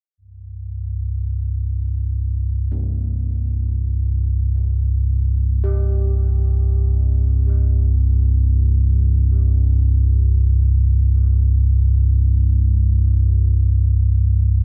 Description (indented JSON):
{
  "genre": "dark ambient drone",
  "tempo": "free time",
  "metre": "none",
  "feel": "none",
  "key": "unclear",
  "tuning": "A4 = 440 Hz",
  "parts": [
    { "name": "deep rumbling drone", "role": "drone", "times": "0.2-14.6 s", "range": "C2 to G2", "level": "-18 LUFS", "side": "equal", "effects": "built-in reverb, subtle chorus" },
    { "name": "gamelan-type bossed gongs", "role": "arpeggios", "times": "2.7-13.0 s", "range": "C2 to G4", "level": "-39 LUFS", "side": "equal", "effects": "diffuse ambient delay" }
  ],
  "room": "wet cathedral reverb, RT60 6.1 s",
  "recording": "worn, warbling old tape, cassette tape, warbly pitch drift",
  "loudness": "-18 LUFS",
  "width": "mono",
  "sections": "0.1-14.6 A section",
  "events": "fade-in on kettle gongs 0.1-14.6",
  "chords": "0.1 C5"
}